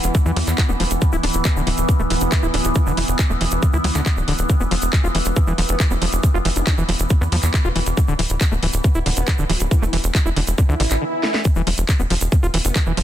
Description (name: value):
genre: psychedelic trance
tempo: 138 BPM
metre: 4/4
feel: straight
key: unclear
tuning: A4 = 439 Hz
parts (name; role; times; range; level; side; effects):
- overtone-sweeping drone; sustained chords; 0.0-13.0 s; E3 to B3; -26 LUFS; equal; chorus, built-in reverb, sidechain pumping
- tight sequencer bass; bass; 0.0-13.0 s; D1 to E2; -21 LUFS; equal; tube saturation
- garage drum kit; drums; 0.0-13.0 s; handclaps, hi-hat, snare drum; -25 LUFS; equal; none
- egg shaker; percussion; 0.0-12.9 s; none; -32 LUFS; right 6 dB; none
- overdriven acid bass; riff; 0.1-13.0 s; D3 to F4; -26 LUFS; moving between left 6 dB and right 7 dB; distortion, auto-pan, sidechain pumping, digital delay
- electronic kick drum; drums; 0.1-12.8 s; none; -17 LUFS; equal; none
- vowel-sweep wobble bass; second line; 0.7-3.1, 5.7-12.8 s; E3 to D4; -34 LUFS; left 5 dB; none
- swell; sound effects; 10.7-11.5 s; none; -25 LUFS; right 2 dB; none
room: little or no reverb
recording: dense, heavily limited modern master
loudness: -16 LUFS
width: side -11 dB against mid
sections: 0.0-11.5 A section; 11.5-13.0 B section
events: swell 10.7-11.5; stop 11.0-11.5; drum fill 11.2; drop 11.5-13.0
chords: 0.0 E5; 1.0 D5; 4.5 E5; 8.0 D5; 11.5 E5